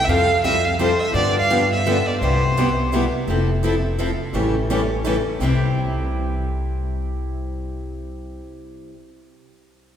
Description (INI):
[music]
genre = acoustic string swing (jazz manouche)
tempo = 169 BPM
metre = 3/4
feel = swing 60% on 8ths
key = C major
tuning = A4 = 439 Hz
[part]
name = rich violin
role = melody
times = 0.0-2.9 s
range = C5 to F5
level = -21 LUFS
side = right 2 dB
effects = none
[part]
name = picked steel-string acoustic guitar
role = accompaniment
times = 0.1-8.9 s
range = C3 to A4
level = -24 LUFS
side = left 4 dB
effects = none
[part]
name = picked steel-string acoustic guitar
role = accompaniment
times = 0.1-8.9 s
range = C3 to A4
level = -26 LUFS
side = right 4 dB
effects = none
[part]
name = upright bass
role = bass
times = 0.1-8.4 s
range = F1 to G2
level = -23 LUFS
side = equal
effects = none
[sound]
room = wet church reverb, RT60 3.4 s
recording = recorded in a church or concert hall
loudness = -18 LUFS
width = side -9 dB against mid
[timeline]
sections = 0.0-3.3 A section; 3.3-5.4 B section; 5.4-7.5 C section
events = none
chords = 0.1 Fadd9; 1.1 G7; 2.2 Cmaj7; 3.3 Fmaj7; 4.3 A7; 5.4 C